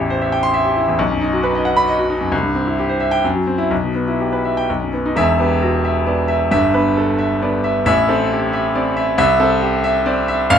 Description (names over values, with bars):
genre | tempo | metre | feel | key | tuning
classical, virtuoso piano study | 134 BPM | 3/4 | rubato | E minor | A4 = 440 Hz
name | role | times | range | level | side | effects
clear grand piano | solo | 0.0-10.6 s | E1 to C6 | -14 LUFS | equal | none
room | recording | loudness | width
light reverb | none | -15 LUFS | side -8 dB against mid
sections
0.0-5.2 A section; 5.2-10.6 B section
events
none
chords
0.0 Am7; 1.0 B; 2.3 C; 3.2 Esus2/F#; 3.7 Em/B; 4.7 B; 5.2 Em; 6.5 Em/G; 7.9 Am; 9.2 Am/C